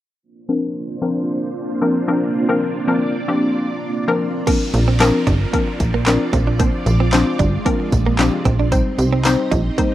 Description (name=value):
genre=dance-pop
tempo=113 BPM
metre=4/4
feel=straight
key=unclear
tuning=A4 = 440 Hz
part: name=string machine, full ensemble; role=sustained chords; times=0.2-9.9 s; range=Ab3 to Eb5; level=-23 LUFS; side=right 2 dB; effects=ensemble chorus, sidechain pumping, low-pass filter
part: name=hollow square pluck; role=accompaniment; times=0.5-9.9 s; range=F3 to C5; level=-20 LUFS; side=left 3 dB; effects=chorus, sidechain pumping, low-pass filter
part: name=direct-recorded clean electric guitar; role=riff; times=4.5-9.9 s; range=Bb3 to Eb4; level=-23 LUFS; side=right 7 dB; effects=wide subtle chorus
part: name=pop drum kit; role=drums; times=4.5-9.9 s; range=crash cymbal, handclaps, hi-hat, kick drum, snare drum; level=-21 LUFS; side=right 1 dB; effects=none
part: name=tambourine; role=percussion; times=4.5-9.9 s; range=none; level=-36 LUFS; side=right 11 dB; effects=none
part: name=downlifter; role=sound effects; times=4.5-8.7 s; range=none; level=-36 LUFS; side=right 2 dB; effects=none
part: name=plucky analog bass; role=bass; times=4.7-9.7 s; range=G1 to C2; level=-17 LUFS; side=equal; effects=sidechain pumping
room=light reverb, digital ambience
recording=rough home demo mix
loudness=-15 LUFS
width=side -13 dB against mid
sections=0.2-4.5 A section; 4.5-9.9 B section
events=filter sweep 0.2-4.5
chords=0.2 Bbadd9; 8.7 Cm